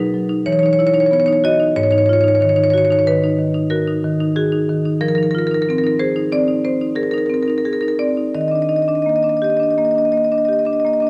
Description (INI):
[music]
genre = classical, contemporary piece for solo marimba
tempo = 84-93 BPM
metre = 5/4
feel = rubato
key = unclear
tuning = A4 = 440 Hz
[part]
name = marimba with medium hard mallets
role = solo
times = 0.0-11.1 s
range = Ab2 to Eb5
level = -17 LUFS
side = equal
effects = none
[sound]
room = moderate recital hall reverb, RT60 1.5 s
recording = dark, warm production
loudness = -17 LUFS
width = mono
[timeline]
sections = 0.0-11.1 A section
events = none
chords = 0.4 Esus2; 1.8 Abm7; 5.0 Fm7; 8.3 Ebmaj7